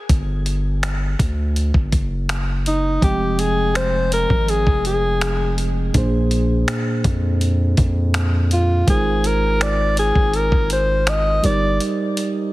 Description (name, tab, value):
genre	contemporary R&B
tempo	82 BPM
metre	4/4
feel	straight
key	F dorian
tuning	A4 = 440 Hz
part	long sustained 808-style bass	bass	0.1-11.8 s	F1 to F2	-20 LUFS	equal	none
part	dusty soul sampler-style drum kit	drums	0.1-12.3 s	finger snaps, hi-hat, kick drum	-21 LUFS	equal	none
part	breathy alto saxophone	melody	2.7-11.8 s	Eb4 to Eb5	-21 LUFS	left 1 dB	digital delay
part	mellow tine electric piano	accompaniment	3.0-12.5 s	Bb2 to G5	-23 LUFS	right 2 dB	none
room	light reverb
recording	heavily compressed radio sound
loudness	-16 LUFS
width	side -18 dB against mid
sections	0.0-12.5 A section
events	break 11.8-12.5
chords	0.0 Dadd11; 2.3 Ebm/Gb; 3.0 Fm9; 5.9 Bb7; 8.9 Ab6; 11.4 Ebmaj7/G